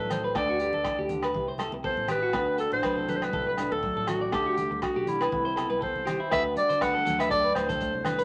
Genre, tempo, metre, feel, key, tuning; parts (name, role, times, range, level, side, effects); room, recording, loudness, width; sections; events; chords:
highlife guitar band; 121 BPM; 4/4; swing 55% on 16ths; D mixolydian; A4 = 440 Hz
breathy clarinet; melody; 0.0-8.2 s; E4 to F#5; -30 LUFS; equal
nylon-string guitar; accompaniment; 0.0-8.2 s; A2 to B4; -38 LUFS; equal
clean electric guitar; arpeggios; 0.0-8.2 s; E4 to D5; -34 LUFS; equal
fingered electric bass; bass; 0.0-8.2 s; A1 to D3; -41 LUFS; equal
crunchy breakbeat drum kit; drums; 0.1-8.2 s; hi-hat, kick drum, rim click; -42 LUFS; equal
agogo bells; percussion; 0.1-8.2 s; -39 LUFS; equal
congas; percussion; 0.1-8.2 s; -43 LUFS; equal
wet club reverb, RT60 0.6 s; -27 LUFS; mono
0.0-6.3 A section; 6.3-8.2 B section
0.3 Gadd9/D; 1.3 Cmaj7; 2.3 D; 4.3 Gadd9/D; 5.3 Cmaj7; 6.3 D